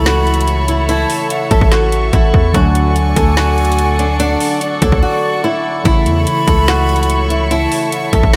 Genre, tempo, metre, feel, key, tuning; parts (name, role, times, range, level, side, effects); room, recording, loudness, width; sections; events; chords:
hip hop, trap; 145 BPM; 4/4; half-time; A major; A4 = 441 Hz
flamenco guitar; melody; 0.0-8.4 s; D4 to A4; -20 LUFS; equal; subtle chorus, diffuse ambient delay
breathy jazz flute; second line; 0.0-8.3 s; C#5 to B5; -24 LUFS; equal; diffuse ambient delay
warbly lo-fi synth keys; accompaniment; 0.0-8.4 s; C#3 to E4; -24 LUFS; equal; chorus
rich chamber string section; sustained chords; 0.0-8.4 s; A4 to C#6; -24 LUFS; equal
hard-hitting 808-style bass; bass; 0.0-8.4 s; A1 to E2; -18 LUFS; equal
trap drum kit; drums; 0.1-8.4 s; hi-hat, kick drum, snare drum; -19 LUFS; equal
moderate huge ambient reverb, RT60 4.6 s; dreamy mix soaked in reverb; -14 LUFS; mono
0.0-8.4 A section
drums muted 5.0-5.9
0.0 A; 2.5 Dmaj7; 5.9 A